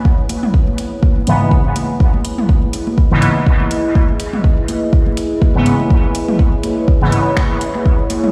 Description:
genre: dub techno.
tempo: 123 BPM.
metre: 4/4.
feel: swing 56% on 16ths.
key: unclear.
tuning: A4 = 440 Hz.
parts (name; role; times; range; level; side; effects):
deep dark ambient pad; sustained chords; 0.0-8.3 s; E4 to D#5; -24 LUFS; equal; chorus, built-in reverb, sidechain pumping.
electronic kick drum; drums; 0.1-8.0 s; none; -15 LUFS; equal; none.
deep house drum kit; drums; 0.3-8.2 s; finger snaps, hi-hat; -30 LUFS; equal; dub echo.
electronic congas and toms; percussion; 0.3-8.3 s; none; -25 LUFS; equal; overdrive, sidechain pumping on perc, sidechain pumping on toms, dub echo.
resonant sweep polysynth; stabs; 1.3-7.2 s; G#2 to B3; -20 LUFS; equal; chorus, phaser, sidechain pumping, dub echo.
room: light reverb, digital ambience.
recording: played on a big sound system in a bare room, stone room reverb, vinyl crackle.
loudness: -15 LUFS.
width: mono.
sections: 0.0-8.3 A section.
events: none.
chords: 0.0 C#m7.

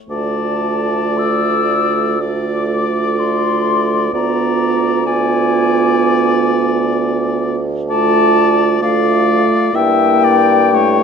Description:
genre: classical, slow romantic movement for wind quintet.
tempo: 53-66 BPM.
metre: 4/4.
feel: rubato.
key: D minor.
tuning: A4 = 439 Hz.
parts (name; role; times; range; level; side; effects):
mellow concert flute; melody; 0.1-11.0 s; F5 to E6; -18 LUFS; left 9 dB; none.
warm oboe; second line; 0.1-11.0 s; C#5 to E5; -19 LUFS; left 3 dB; none.
dark clarinet; accompaniment; 0.1-11.0 s; E4 to F4; -19 LUFS; right 12 dB; none.
warm French horn; accompaniment; 0.1-11.0 s; A3 to B3; -21 LUFS; right 2 dB; none.
clear bassoon; bass; 0.1-11.0 s; D2 to G2; -19 LUFS; right 3 dB; none.
room: moderate recital hall reverb, RT60 1.7 s.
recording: none.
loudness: -12 LUFS.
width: side -6 dB against mid.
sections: 0.0-11.0 A section.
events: none.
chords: 0.1 Dm; 4.1 Ddim7; 7.9 Dm; 9.7 Edim/G.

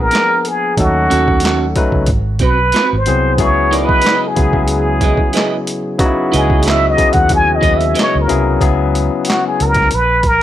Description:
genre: R&B, neo-soul.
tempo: 92 BPM.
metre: 4/4.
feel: swing 55% on 16ths.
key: C# dorian.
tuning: A4 = 441 Hz.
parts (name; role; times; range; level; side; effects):
trumpet with plunger mute; melody; 0.0-10.4 s; F#4 to G#5; -15 LUFS; equal; none.
barky tine electric piano; accompaniment; 0.0-9.9 s; C#3 to B4; -18 LUFS; moving between left 8 dB and left 1 dB; overdrive, auto-pan.
vintage muted fingered electric bass; bass; 0.0-10.4 s; G#1 to D#2; -17 LUFS; right 1 dB; none.
electric guitar at the edge of break-up; second line; 0.1-8.2 s; B#3 to D#5; -20 LUFS; right 7 dB; none.
boom bap sampler-style drum kit; drums; 0.1-10.4 s; handclaps, hi-hat, kick drum, snare drum; -17 LUFS; right 1 dB; overdrive.
room: digital ambience.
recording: none.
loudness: -11 LUFS.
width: side -12 dB against mid.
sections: 0.0-8.6 A section; 8.6-10.4 B section.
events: muted trumpet solo 0.0-8.6.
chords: 0.0 A#7b9; 0.8 D#m7b5; 2.1 G#7alt; 3.4 C#m9; 8.6 C#m7; 9.9 A#5.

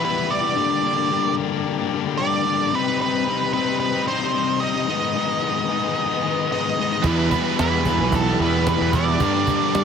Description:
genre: quiet-loud alternative rock.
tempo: 111 BPM.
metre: 4/4.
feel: straight.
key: E harmonic minor.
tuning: A4 = 441 Hz.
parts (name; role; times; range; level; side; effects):
octave-fuzz lead guitar; melody; 0.0-9.8 s; A4 to Eb5; -23 LUFS; right 5 dB; distortion.
muted studio string section; sustained chords; 0.0-9.8 s; C4 to E6; -33 LUFS; left 2 dB; none.
distorted electric guitar; riff; 0.0-9.8 s; G2 to E4; -23 LUFS; left 11 dB; distortion.
biting overdriven guitar; riff; 7.0-9.8 s; E2 to G3; -24 LUFS; right 2 dB; none.
overdriven electric guitar; riff; 7.0-9.8 s; G2 to E4; -26 LUFS; right 13 dB; none.
fuzz picked electric bass; bass; 7.0-9.8 s; B1 to G3; -23 LUFS; right 1 dB; overdrive.
cajon; drums; 7.0-9.8 s; none; -25 LUFS; right 1 dB; none.
room: light reverb.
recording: none.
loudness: -19 LUFS.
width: side -6 dB against mid.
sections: 0.0-9.8 A section.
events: none.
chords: 0.0 Em; 0.6 Gm; 2.7 Cm; 4.9 G#m; 7.0 Em; 9.2 Gm.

